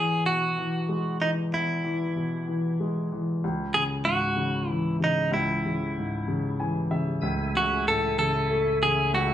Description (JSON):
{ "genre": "pop", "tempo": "63 BPM (dotted quarters)", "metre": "6/8", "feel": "straight", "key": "E major", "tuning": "A4 = 441 Hz", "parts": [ { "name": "direct-recorded clean electric guitar", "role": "melody", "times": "0.0-9.3 s", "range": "D#4 to A4", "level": "-26 LUFS", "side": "right 1 dB", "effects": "none" }, { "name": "clear baby grand piano", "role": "accompaniment", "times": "0.0-9.3 s", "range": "C#2 to G#5", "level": "-27 LUFS", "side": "left 1 dB", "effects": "none" }, { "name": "percussive tonewheel organ", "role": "sustained chords", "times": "7.2-9.3 s", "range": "C#2 to G#5", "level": "-30 LUFS", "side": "right 2 dB", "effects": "chorus vibrato, slow rotary speaker" } ], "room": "wet large studio reverb, RT60 0.8 s", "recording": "band playing live in one room", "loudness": "-24 LUFS", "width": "side -11 dB against mid", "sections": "0.0-9.3 A section", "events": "grand piano fill 6.3-7.2", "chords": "0.0 Eadd9; 3.4 C#m; 7.2 Amaj13/C#", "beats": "0.57 | 1.52 2.48 | 3.43 4.38 | 5.33 6.28 | 7.23 8.18 | 9.13" }